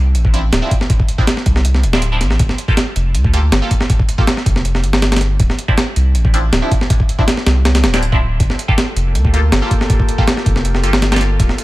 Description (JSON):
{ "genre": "drum and bass, jungle", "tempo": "160 BPM", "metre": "4/4", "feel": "straight", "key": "G minor", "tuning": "A4 = 440 Hz", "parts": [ { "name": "soft dub sub bass", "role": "bass", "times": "0.0-11.5 s", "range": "D1 to D2", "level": "-14 LUFS", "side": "equal", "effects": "tube saturation" }, { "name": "breakbeat sampler-style drum kit", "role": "drums", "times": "0.1-11.6 s", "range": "hi-hat, kick drum, snare drum", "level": "-14 LUFS", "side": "equal", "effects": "studio reverb" }, { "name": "band-passed chord stab", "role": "stabs", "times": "0.3-11.2 s", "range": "F3 to A4", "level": "-23 LUFS", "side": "right 1 dB", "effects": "phaser, dub echo" }, { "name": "airy breathy pad", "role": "sustained chords", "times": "8.7-11.6 s", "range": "Bb3 to C5", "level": "-24 LUFS", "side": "left 1 dB", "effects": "chorus" } ], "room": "digital ambience", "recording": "none", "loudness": "-12 LUFS", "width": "side -18 dB against mid", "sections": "0.0-11.6 A section", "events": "none", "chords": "0.0 Dm9; 2.4 Gm9; 5.4 Dm9; 8.4 Gm9", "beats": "0.15 0.52 | 0.90 1.27 1.65 2.02 | 2.40 2.77 3.15 3.52 | 3.90 4.27 4.65 5.02 | 5.40 5.77 6.15 6.52 | 6.90 7.27 7.65 8.02 | 8.40 8.77 9.15 9.52 | 9.90 10.27 10.65 11.02 | 11.40" }